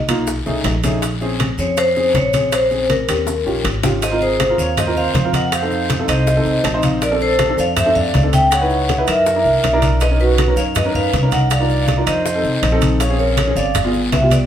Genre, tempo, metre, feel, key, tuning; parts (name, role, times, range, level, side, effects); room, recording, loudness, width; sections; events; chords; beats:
Afro-Cuban jazz; 160 BPM; 4/4; straight; Bb minor; A4 = 440 Hz
vibraphone with medium hard mallets; melody; 0.0-14.4 s; Bb4 to G5; -18 LUFS; equal
upright bass; bass; 0.0-14.5 s; G1 to Gb2; -20 LUFS; equal
warm baby grand piano; accompaniment; 0.1-14.5 s; A3 to A5; -22 LUFS; left 1 dB
claves; percussion; 0.1-13.9 s; -34 LUFS; left 6 dB
congas; percussion; 0.1-14.5 s; -22 LUFS; left 1 dB
guiro; percussion; 0.1-14.5 s; -30 LUFS; left 4 dB
maracas; percussion; 0.1-14.5 s; -33 LUFS; right 4 dB
timbales; percussion; 0.1-14.5 s; -25 LUFS; right 6 dB
bongos; percussion; 0.3-14.5 s; -27 LUFS; left 5 dB
mellow concert flute; second line; 4.0-14.4 s; F#4 to E5; -25 LUFS; right 1 dB
wet studio reverb, RT60 0.7 s; band playing live in one room; -14 LUFS; side -10 dB against mid
0.0-4.0 A section; 4.0-14.5 B section
drum fill 3.3-4.0; grand piano fill 6.5-7.0
0.3 B13; 1.0 Bbm9; 2.5 Bbm7; 3.3 Eb9; 4.0 Ab6; 5.5 F7; 7.0 Bbmaj9; 8.5 Dbm7; 9.3 Gbaug7; 10.0 Bmaj7; 11.5 Cm11; 12.3 F7; 13.0 Bbm9; 13.8 G7b9
0.28 0.65 | 1.02 1.40 1.77 2.15 | 2.52 2.90 3.27 3.65 | 4.02 4.40 4.77 5.15 | 5.52 5.90 6.27 6.64 | 7.02 7.39 7.77 8.14 | 8.52 8.89 9.27 9.64 | 10.01 10.39 10.76 11.13 | 11.51 11.88 12.26 12.63 | 13.00 13.38 13.75 14.12